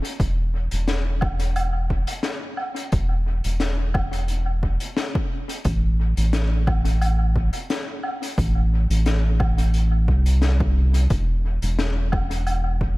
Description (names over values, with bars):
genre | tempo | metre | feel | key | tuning
ambient dub | 88 BPM | 4/4 | swing 53% on 16ths | unclear | A4 = 439 Hz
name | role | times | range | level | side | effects
raw garage drum kit | drums | 0.0-12.6 s | hi-hat, snare drum, woodblock | -28 LUFS | left 2 dB | dub echo
round analog bass | bass | 0.2-13.0 s | E1 to C2 | -20 LUFS | equal | tube saturation
electronic kick drum | drums | 0.2-13.0 s | none | -25 LUFS | equal | overdrive
room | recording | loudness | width
little or no reverb | none | -20 LUFS | side -20 dB against mid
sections
0.2-13.0 A section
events
none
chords
none